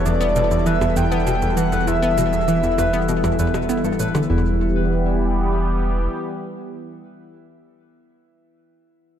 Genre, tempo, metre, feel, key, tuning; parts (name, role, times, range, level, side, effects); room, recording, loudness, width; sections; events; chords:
ambient, sequencer-driven space music; 99 BPM; 4/4; straight; E minor; A4 = 442 Hz
breathy flute-like synth lead; melody; 0.0-3.7 s; D5 to G5; -24 LUFS; equal; analog chorus, ping-pong delay
sweeping resonant pad; sustained chords; 0.0-7.5 s; E3 to A4; -24 LUFS; equal; chorus
concert harp; arpeggios; 0.0-6.9 s; E3 to B4; -27 LUFS; left 3 dB; auto-pan, ping-pong delay
warm sub bass; bass; 0.0-6.1 s; E1; -24 LUFS; equal
bubbling stepped-filter texture; texture; 0.0-4.3 s; E5; -35 LUFS; right 7 dB
analog pluck; riff; 0.1-4.6 s; E2 to B3; -23 LUFS; right 1 dB; chorus, cassette tape, ping-pong delay
shaker and percussion blips; percussion; 0.1-4.3 s; -33 LUFS; right 2 dB; ping-pong delay
moderate plate reverb, RT60 2.8 s; -17 LUFS; side -9 dB against mid
0.0-4.3 A section; 4.3-6.7 B section
0.0 Em